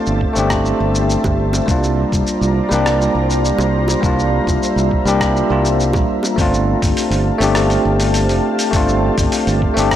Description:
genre	sunset chillout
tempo	102 BPM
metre	4/4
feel	straight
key	unclear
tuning	A4 = 445 Hz
part	barky tine electric piano	accompaniment	0.0-10.0 s	G3 to G4	-17 LUFS	equal	auto-pan, analog delay
part	ethereal airy pad	sustained chords	0.0-10.0 s	F4 to Bb5	-22 LUFS	equal	ensemble chorus, built-in reverb
part	modern bright fingered electric bass	bass	0.1-10.0 s	F1 to C2	-18 LUFS	equal	tube saturation
part	dusty soul sampler-style drum kit	drums	0.1-10.0 s	hi-hat, rim click, shaker	-24 LUFS	equal	none
part	electronic kick drum	drums	0.2-10.0 s	none	-21 LUFS	equal	none
part	bongos	percussion	1.2-6.3 s	none	-26 LUFS	right 2 dB	none
room	light reverb, digital ambience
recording	dry, gritty hardware recording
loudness	-13 LUFS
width	side -11 dB against mid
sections	0.0-6.4 A section; 6.4-10.0 B section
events	none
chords	0.0 G9sus4; 1.7 C9sus4; 6.4 G9sus4

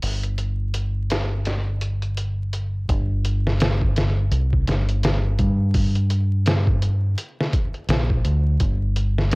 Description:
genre	trip hop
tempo	84 BPM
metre	4/4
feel	swing 59% on 16ths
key	G minor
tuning	A4 = 440 Hz
part	deep dub fingered electric bass	bass	0.0-9.4 s	G1 to G2	-20 LUFS	equal	none
part	trip hop sampler-style drum kit	drums	0.0-9.4 s	hi-hat, kick drum, snare drum	-23 LUFS	equal	high-pass filter on snare, studio ambience, high-pass filter on hats, high-pass filter on kick
room	little or no reverb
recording	worn, warbling old tape, cassette tape, vinyl crackle, warbly pitch drift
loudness	-19 LUFS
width	side -28 dB against mid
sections	0.0-2.9 A section; 2.9-9.4 B section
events	none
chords	none

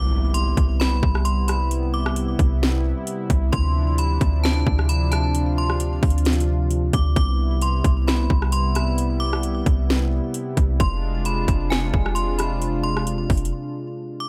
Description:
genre	hip hop, atmospheric cloud-rap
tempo	132 BPM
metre	4/4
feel	half-time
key	C major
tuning	A4 = 440 Hz
part	metallic FM bell	melody	0.0-14.3 s	Ab5 to D6	-31 LUFS	equal	chorus, phaser, delay
part	warm analog pad	sustained chords	0.0-14.3 s	C3 to F4	-29 LUFS	equal	chorus, sidechain pumping
part	clean 808-style bass	bass	0.0-13.5 s	F1 to D2	-24 LUFS	equal	none
part	impact	sound effects	0.0-1.7 s	none	-37 LUFS	equal	none
part	trap drum kit	drums	0.3-13.5 s	hi-hat, kick drum, rim click, snare drum	-25 LUFS	equal	overdrive
room	digital ambience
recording	none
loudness	-21 LUFS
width	mono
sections	0.0-14.3 A section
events	impact 0.0-1.7; break 13.5-14.3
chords	0.0 Cmaj7; 3.5 Dm9; 7.2 Cmaj7; 10.8 Fm6

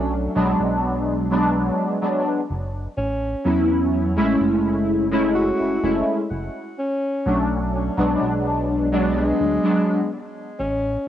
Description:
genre	vaporwave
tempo	63 BPM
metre	4/4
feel	straight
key	unclear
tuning	A4 = 440 Hz
part	breathy alto saxophone	melody	0.0-11.1 s	F#3 to F#4	-28 LUFS	equal	vintage 12-bit sampler grit, cassette tape, plate reverb, tape echo
part	warbly lo-fi synth keys	accompaniment	0.0-10.0 s	F#3 to E4	-19 LUFS	equal	phaser, ensemble chorus, cassette tape, analog delay
part	chorused synth bass	bass	0.0-11.0 s	F#1 to E2	-28 LUFS	equal	none
room	moderate studio reverb, RT60 0.6 s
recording	home recording on cassette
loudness	-19 LUFS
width	side -11 dB against mid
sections	0.0-11.1 A section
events	none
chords	0.0 Bm7; 0.6 Bm6; 3.0 A6; 4.4 F#m9; 6.8 Bm7; 8.2 Bm6

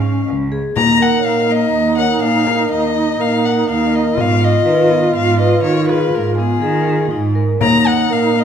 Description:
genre	contemporary instrumental, chamber music in an uneven meter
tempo	123 BPM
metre	7/4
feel	straight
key	Eb minor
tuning	A4 = 440 Hz
part	dark violin	melody	0.0-8.4 s	Ab4 to Bb5	-18 LUFS	left 5 dB	none
part	dark duduk	second line	0.0-8.4 s	Db4 to F4	-20 LUFS	right 3 dB	none
part	vibraphone with medium hard mallets	arpeggios	0.0-8.4 s	Bb3 to Cb5	-19 LUFS	left 2 dB	none
part	dark cello	bass	0.0-8.4 s	Db2 to Eb3	-18 LUFS	right 3 dB	none
part	frame drum	percussion	0.0-7.8 s	none	-25 LUFS	left 5 dB	none
part	large celesta	texture	1.0-8.1 s	Bb4 to Bb5	-25 LUFS	right 2 dB	none
room	wet recital hall reverb, RT60 1.3 s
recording	none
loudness	-12 LUFS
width	side -8 dB against mid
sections	0.8-8.4 A section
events	none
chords	0.0 Db; 0.8 Ebsus2; 4.2 Abm; 7.6 Ebsus2

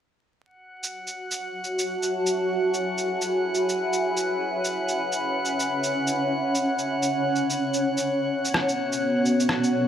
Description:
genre	future garage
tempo	126 BPM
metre	4/4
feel	swing 62% on 16ths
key	F# minor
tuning	A4 = 440 Hz
part	granular cloud pad	sustained chords	1.2-9.9 s	B3 to B5	-24 LUFS	equal	built-in reverb
part	drifting glass-harmonics texture	texture	0.7-9.9 s	F#5	-30 LUFS	right 1 dB	chorus, built-in reverb
part	electronic shaker and rim click	drums	0.8-9.7 s	none	-29 LUFS	equal	studio reverb
room	moderate huge ambient reverb, RT60 7.0 s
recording	vinyl crackle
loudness	-23 LUFS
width	side -9 dB against mid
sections	0.5-9.9 A section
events	none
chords	0.5 F#m11; 4.3 C#m7; 8.1 Bm7

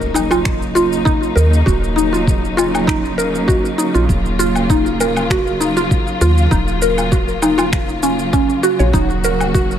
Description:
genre	organic downtempo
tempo	99 BPM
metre	4/4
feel	straight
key	Eb minor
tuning	A4 = 440 Hz
part	muted studio string section	sustained chords	0.0-9.8 s	Db3 to Gb4	-20 LUFS	equal	sidechain pumping, shimmer reverb
part	mallet-like synth pluck	arpeggios	0.0-9.8 s	Db4 to Db5	-17 LUFS	equal	lush chorus, tape echo, shimmer reverb
part	woody FM bass	bass	0.0-9.8 s	Eb1 to Eb2	-19 LUFS	equal	tube saturation
part	electronic shaker, woodblock and finger snaps	drums	0.0-9.8 s	none	-24 LUFS	left 1 dB	overdrive
part	impact	sound effects	0.0-1.7 s	none	-30 LUFS	equal	none
part	electronic kick drum	drums	0.5-9.7 s	none	-18 LUFS	equal	overdrive
room	light reverb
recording	none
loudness	-13 LUFS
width	side -9 dB against mid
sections	0.0-9.8 A section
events	impact 0.0-1.7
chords	0.0 Ebm7; 8.9 Gb/Eb

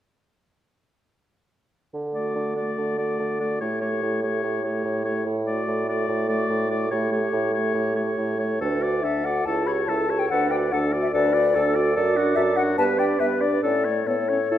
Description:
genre	quick classical-period movement for wind quintet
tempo	144 BPM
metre	4/4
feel	rubato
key	D major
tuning	A4 = 440 Hz
part	mellow bassoon	bass	1.9-14.6 s	C#2 to D3	-25 LUFS	right 2 dB	none
part	clear oboe	second line	2.1-14.6 s	F#4 to D5	-28 LUFS	left 3 dB	none
part	dark clarinet	accompaniment	2.1-14.6 s	F#4 to D5	-30 LUFS	right 6 dB	none
part	mellow French horn	accompaniment	2.1-14.6 s	A3 to G4	-28 LUFS	equal	none
part	hollow concert flute	melody	9.0-14.6 s	C#5 to B5	-25 LUFS	left 6 dB	none
room	wet recital hall reverb, RT60 1.3 s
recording	none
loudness	-21 LUFS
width	side -11 dB against mid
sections	1.9-8.6 A section; 8.6-14.6 B section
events	none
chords	1.9 D; 3.6 A7; 5.3 D/A; 6.9 A7; 8.6 D; 9.5 A7/C#; 10.3 D; 12.0 D/F#; 12.8 G; 13.6 A

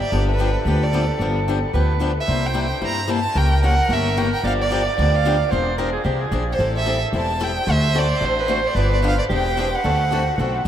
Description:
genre	acoustic string swing (jazz manouche)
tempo	222 BPM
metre	4/4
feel	swing 56% on 8ths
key	unclear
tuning	A4 = 441 Hz
part	warm violin	melody	0.0-10.7 s	B4 to Bb5	-24 LUFS	right 2 dB	none
part	warm soprano saxophone	second line	0.0-10.7 s	F#4 to D5	-25 LUFS	right 3 dB	tape echo
part	picked swing-style acoustic guitar	accompaniment	0.1-10.7 s	C3 to A4	-25 LUFS	left 4 dB	none
part	upright bass	bass	0.1-10.7 s	E1 to G2	-21 LUFS	equal	none
room	moderate huge ambient reverb, RT60 9.0 s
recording	in a vast, echoing space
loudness	-17 LUFS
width	side -10 dB against mid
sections	0.0-10.7 A section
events	none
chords	0.1 G7; 2.3 C7; 3.4 C#dim7; 4.4 G7; 5.5 Eaug7; 6.6 Am7; 7.7 D7; 8.8 G7; 9.3 E7alt; 9.8 D7

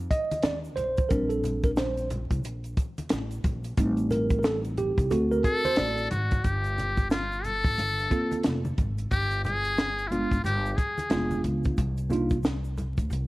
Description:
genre	hip hop, jazz-hop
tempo	90 BPM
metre	4/4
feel	swing 61% on 16ths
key	G minor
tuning	A4 = 440 Hz
part	upright bass	bass	0.0-13.3 s	F1 to Eb2	-30 LUFS	equal	none
part	mellow tine electric piano	accompaniment	0.1-12.4 s	G3 to Eb5	-28 LUFS	right 2 dB	medium stereo tremolo
part	compact cocktail drum kit	drums	0.1-13.3 s	hi-hat, kick drum, snare drum	-28 LUFS	equal	none
part	egg shaker and congas	percussion	0.1-13.3 s	none	-39 LUFS	equal	none
part	trumpet with metal mute	melody	5.4-11.4 s	E4 to A4	-28 LUFS	left 2 dB	none
room	small room ambience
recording	vinyl crackle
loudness	-24 LUFS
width	side -19 dB against mid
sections	0.0-6.4 A section; 6.4-13.3 B section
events	tine electric piano solo 0.0-6.4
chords	0.0 F7(no3) (rootless); 1.1 Bb69; 3.8 Am7b5; 5.1 D7; 6.4 Gm11; 9.1 G7b9; 11.8 Cm11

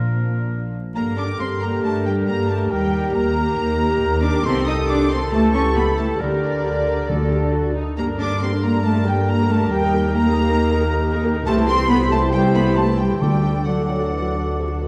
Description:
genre	quick classical-period movement for symphony orchestra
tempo	137 BPM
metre	4/4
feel	straight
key	G minor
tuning	A4 = 441 Hz
part	warm studio violin section	melody	0.0-14.8 s	D4 to Eb6	-35 LUFS	equal	none
part	warm oboe	second line	0.0-14.8 s	A4 to D5	-34 LUFS	equal	none
part	warm studio violin section	second line	0.0-14.8 s	Bb3 to Eb6	-34 LUFS	equal	none
part	rich studio viola section	accompaniment	0.0-14.9 s	F3 to Bb4	-30 LUFS	equal	none
part	mellow French horn section	sustained chords	0.0-14.8 s	Bb3 to A4	-31 LUFS	equal	none
part	dark studio cello section	bass	0.0-14.8 s	Bb2 to Eb4	-25 LUFS	equal	none
part	rich studio double bass section	bass	0.0-14.8 s	Bb1 to G2	-26 LUFS	equal	none
part	clear clarinet	second line	0.9-14.8 s	F#4 to A4	-33 LUFS	equal	none
part	hollow concert flute	second line	1.0-14.8 s	D5 to Eb6	-31 LUFS	equal	none
part	dark bassoon	accompaniment	1.0-14.9 s	B2 to F#3	-32 LUFS	equal	none
part	mellow trumpet section	stabs	1.0-14.8 s	A4 to D5	-32 LUFS	equal	none
part	timpani	percussion	6.2-7.7, 13.2-13.9 s	D3	-28 LUFS	equal	none
room	moderate concert hall reverb, RT60 2.4 s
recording	dark, warm production, vinyl crackle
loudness	-19 LUFS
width	mono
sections	1.0-14.9 A section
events	none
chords	0.0 Bb; 1.0 Gm; 2.7 Eb; 4.5 Am7b5/C; 5.3 A7/C#; 6.2 Gm/D; 7.1 D; 8.0 Gm; 9.7 Eb; 11.5 Am7/C; 13.2 D

